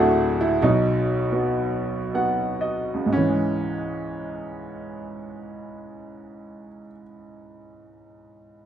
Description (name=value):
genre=classical, lyrical solo piano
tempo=57-96 BPM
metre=3/4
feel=rubato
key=C# minor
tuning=A4 = 440 Hz
part: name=clear upright piano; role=solo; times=0.0-8.7 s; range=D1 to F#5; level=-22 LUFS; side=right 1 dB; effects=none
room=light reverb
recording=close, detailed microphones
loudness=-21 LUFS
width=side -10 dB against mid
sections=0.0-3.1 A section; 3.1-8.7 B section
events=slowing down 0.0-3.1; upright piano fill 1.7-3.1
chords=0.0 Dsus2; 0.6 B; 3.1 C#m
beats=| 0.62 1.33 2.15 | 3.11 4.15 5.15 | 6.12 7.09 8.11